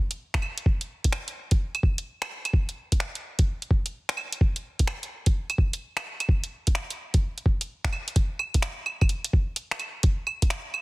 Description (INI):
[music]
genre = future garage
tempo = 128 BPM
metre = 4/4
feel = swing 65% on 16ths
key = none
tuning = none
[part]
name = garage drum kit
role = drums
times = 0.1-10.8 s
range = claves, finger snaps, hi-hat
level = -30 LUFS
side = right 2 dB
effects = overdrive, studio ambience, soft clipping on snare
[part]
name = electronic kick drum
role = drums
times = 0.3-10.5 s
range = none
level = -22 LUFS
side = equal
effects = studio ambience
[sound]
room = digital ambience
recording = dense, heavily limited modern master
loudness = -24 LUFS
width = side -22 dB against mid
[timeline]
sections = 0.0-8.2 A section; 8.2-10.8 B section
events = none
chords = none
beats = 0.19 | 0.66 1.13 1.60 2.06 | 2.53 3.00 3.47 3.94 | 4.41 4.88 5.35 5.82 | 6.28 6.75 7.22 7.69 | 8.16 8.63 9.10 9.56 | 10.03 10.50